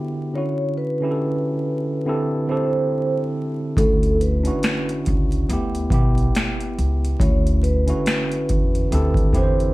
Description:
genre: lo-fi hip hop.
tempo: 70 BPM.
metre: 4/4.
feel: swing 58% on 16ths.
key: D major.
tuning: A4 = 440 Hz.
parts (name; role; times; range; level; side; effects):
tine electric piano; accompaniment; 0.0-9.7 s; D3 to C5; -23 LUFS; equal; medium stereo tremolo.
vibraphone with soft mallets; melody; 0.4-9.7 s; A4 to C#5; -25 LUFS; right 1 dB; none.
upright bass; bass; 3.8-9.7 s; B1 to E2; -22 LUFS; equal; none.
booming analog drum machine; drums; 3.8-9.7 s; hi-hat, kick drum, snare drum; -21 LUFS; equal; none.
room: light reverb.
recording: dark, warm production, vinyl crackle.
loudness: -18 LUFS.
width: side -18 dB against mid.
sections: 0.0-9.7 A section.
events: none.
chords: 0.3 Dmaj9; 2.1 D9sus4; 3.8 Dmaj9; 5.5 G6; 7.2 Dmaj9; 8.9 D13sus4.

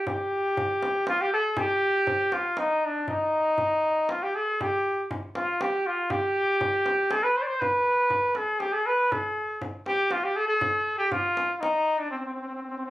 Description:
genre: Persian modal ensemble.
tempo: 120 BPM.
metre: 3/4.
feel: straight.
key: unclear.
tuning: A4 = 441 Hz.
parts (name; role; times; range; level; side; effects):
mellow trumpet; melody; 0.0-12.9 s; C4 to D5; -24 LUFS; equal; none.
tombak; percussion; 0.1-11.7 s; none; -35 LUFS; equal; none.
room: light reverb.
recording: recorded on a phone in the room, studio reverb.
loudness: -23 LUFS.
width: side -15 dB against mid.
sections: 0.0-1.6 A section; 1.6-12.9 B section.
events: break 12.1-12.9.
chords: none.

